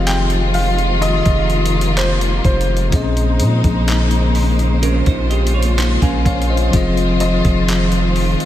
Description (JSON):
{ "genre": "contemporary R&B", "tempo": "63 BPM", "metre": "4/4", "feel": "straight", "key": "F minor", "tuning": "A4 = 444 Hz", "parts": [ { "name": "warm baby grand piano", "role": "melody", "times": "0.0-8.5 s", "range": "C5 to G5", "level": "-23 LUFS", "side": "equal", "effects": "ping-pong delay" }, { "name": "bell-like tine electric piano", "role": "accompaniment", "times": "0.0-8.5 s", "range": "Bb2 to Ab5", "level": "-22 LUFS", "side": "left 3 dB", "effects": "medium stereo tremolo" }, { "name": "warm studio string section", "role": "sustained chords", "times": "0.0-8.5 s", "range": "Db3 to C5", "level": "-20 LUFS", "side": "left 1 dB", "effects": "none" }, { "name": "long sustained 808-style bass", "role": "bass", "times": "0.0-8.4 s", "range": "F1 to Bb2", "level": "-17 LUFS", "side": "equal", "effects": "none" }, { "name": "dusty soul sampler-style drum kit", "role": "drums", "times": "0.1-8.5 s", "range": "handclaps, hi-hat, kick drum", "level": "-21 LUFS", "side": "equal", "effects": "none" }, { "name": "semi-hollow electric guitar", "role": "arpeggios", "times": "4.8-6.7 s", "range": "Db4 to Eb5", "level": "-24 LUFS", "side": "right 7 dB", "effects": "lush chorus, ping-pong delay" } ], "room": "moderate lush hall reverb, RT60 2.4 s", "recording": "dreamy mix soaked in reverb", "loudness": "-13 LUFS", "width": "side -12 dB against mid", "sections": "0.0-8.5 A section", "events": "none", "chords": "0.0 Fm7; 2.9 Bbm11; 6.7 Fm7" }